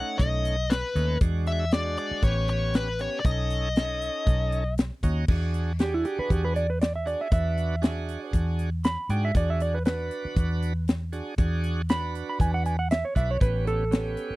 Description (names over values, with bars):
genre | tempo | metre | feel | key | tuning
straight-eighth soul blues | 118 BPM | 4/4 | swing 54% on 16ths | E mixolydian | A4 = 440 Hz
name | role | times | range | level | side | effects
dark smooth lead guitar | melody | 0.0-4.7 s | B4 to F#5 | -29 LUFS | left 3 dB | overdrive
bright tonewheel organ | accompaniment | 0.0-14.4 s | G#3 to B4 | -35 LUFS | right 5 dB | overdrive, slow rotary speaker
vintage muted fingered electric bass | bass | 0.2-14.3 s | A1 to G#2 | -27 LUFS | equal | none
tight funk drum kit | drums | 0.2-14.3 s | crash cymbal, hi-hat, kick drum, snare drum | -23 LUFS | equal | none
clean lap steel guitar | second line | 5.8-14.4 s | E4 to B5 | -29 LUFS | right 3 dB | none
room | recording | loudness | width
little or no reverb | dry, close 1970s-style studio recording | -24 LUFS | side -19 dB against mid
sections
0.0-5.3 A section; 5.3-14.4 B section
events
electric slide guitar solo 5.3-14.4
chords
0.0 B9; 1.2 E9; 2.2 A9; 3.2 B9; 5.3 E9; 13.4 A9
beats
0.19 0.70 | 1.21 1.72 2.23 2.74 | 3.25 3.76 4.26 4.77 | 5.28 5.79 6.30 6.81 | 7.32 7.83 8.33 8.84 | 9.35 9.86 10.37 10.87 | 11.38 11.89 12.39 12.90 | 13.41 13.91